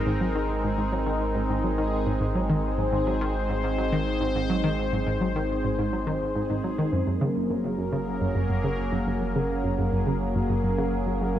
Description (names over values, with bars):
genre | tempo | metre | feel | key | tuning
ambient, sequencer-driven space music | 105 BPM | 4/4 | straight | unclear | A4 = 440 Hz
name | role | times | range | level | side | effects
sweeping resonant pad | sustained chords | 0.0-11.4 s | Gb3 to C5 | -27 LUFS | equal | chorus
warm sub bass | bass | 0.0-11.4 s | Gb1 to Ab1 | -32 LUFS | equal | tube saturation
bubbling stepped-filter texture | texture | 0.0-11.4 s | Ab4 | -42 LUFS | equal | chorus, built-in reverb
analog pluck | riff | 0.1-11.4 s | Gb2 to Gb3 | -28 LUFS | equal | chorus, tape echo
room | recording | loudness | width
moderate plate reverb, RT60 3.4 s | dreamy mix soaked in reverb, cassette tape | -24 LUFS | side -11 dB against mid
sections
0.0-11.4 A section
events
none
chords
0.0 Abadd9; 6.9 Gb